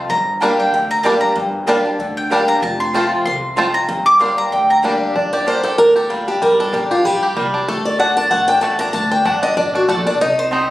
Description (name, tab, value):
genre	bluegrass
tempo	190 BPM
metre	4/4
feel	swing 55% on 8ths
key	G minor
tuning	A4 = 440 Hz
part	picked swing-style acoustic guitar	accompaniment	0.0-10.5 s	F2 to Bb5	-17 LUFS	left 1 dB	none
part	mandolin	melody	0.1-4.8 s	G5 to D6	-16 LUFS	equal	none
part	upright bass	bass	0.1-10.7 s	F1 to D2	-29 LUFS	equal	none
part	bluegrass banjo	arpeggios	0.4-10.7 s	G3 to G4	-20 LUFS	right 1 dB	none
part	mandolin	stabs	0.4-10.6 s	A3 to A5	-22 LUFS	right 2 dB	none
room	moderate small room reverb, RT60 0.5 s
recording	recorded on a phone in the room, studio reverb, compression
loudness	-14 LUFS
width	side -16 dB against mid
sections	0.0-5.2 A section; 5.2-10.7 A section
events	mandolin solo 0.0-5.2; steel-string acoustic guitar solo 5.2-10.7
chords	0.1 Gm; 2.6 F; 3.9 Gm; 7.7 D